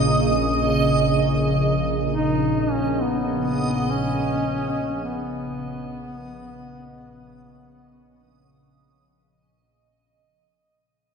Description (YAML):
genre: dark ambient drone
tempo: free time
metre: none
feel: none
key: Bb phrygian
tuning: A4 = 438 Hz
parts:
  - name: organ-like drone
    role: drone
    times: 0.0-9.8 s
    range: Bb1 to Db3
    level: -23 LUFS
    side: equal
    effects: ensemble chorus, built-in reverb
  - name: backwards swelling texture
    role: texture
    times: 0.0-9.7 s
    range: Eb5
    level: -26 LUFS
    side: right 3 dB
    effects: built-in reverb, shimmer reverb
  - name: mellow duduk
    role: melody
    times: 2.1-8.5 s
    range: Cb4 to Eb4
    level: -27 LUFS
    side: left 2 dB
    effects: shimmer reverb, ping-pong delay
room: wet cathedral reverb, RT60 6.1 s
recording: dark, warm production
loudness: -20 LUFS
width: side -6 dB against mid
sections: 0.0-9.6 A section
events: fade-out 0.0-9.6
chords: 0.0 Bbmadd11